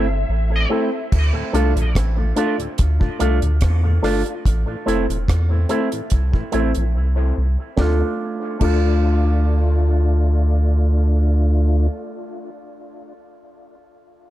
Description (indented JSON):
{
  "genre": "dub reggae",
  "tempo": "72 BPM",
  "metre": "4/4",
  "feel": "straight",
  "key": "D minor",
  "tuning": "A4 = 441 Hz",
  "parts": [
    { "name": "high-gain lead guitar", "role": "melody", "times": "0.0-0.7 s", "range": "E5", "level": "-30 LUFS", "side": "left 2 dB", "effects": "distortion, dub echo" },
    { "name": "electric guitar with an envelope filter", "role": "accompaniment", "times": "0.0-12.2 s", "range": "A3 to F4", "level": "-26 LUFS", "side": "right 4 dB", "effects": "low-pass filter, dub echo" },
    { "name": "dark upright piano", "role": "stabs", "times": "0.0-12.2 s", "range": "C4 to A4", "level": "-26 LUFS", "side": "left 4 dB", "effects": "low-pass filter, dub echo" },
    { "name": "warm sub bass", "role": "bass", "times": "0.0-11.9 s", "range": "E1 to E2", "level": "-17 LUFS", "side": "equal", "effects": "none" },
    { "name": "tonewheel organ", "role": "accompaniment", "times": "0.1-11.9 s", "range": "D2 to F4", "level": "-29 LUFS", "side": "left 2 dB", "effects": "chorus vibrato, slow rotary speaker, high-pass filter, low-pass filter, dub echo" },
    { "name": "deep reggae drum kit", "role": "drums", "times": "1.1-8.9 s", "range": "crash cymbal, hi-hat, kick drum, rim click, snare drum", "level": "-22 LUFS", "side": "equal", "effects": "none" }
  ],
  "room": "little or no reverb",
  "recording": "echo-heavy mix",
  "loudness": "-16 LUFS",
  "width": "side -14 dB against mid",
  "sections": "0.0-1.1 A section; 1.1-7.8 B section; 7.8-11.1 C section",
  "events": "break 0.0-1.1; drums muted 6.9-7.8",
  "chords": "0.0 Am; 1.1 Dm; 4.4 Am; 7.8 Dm"
}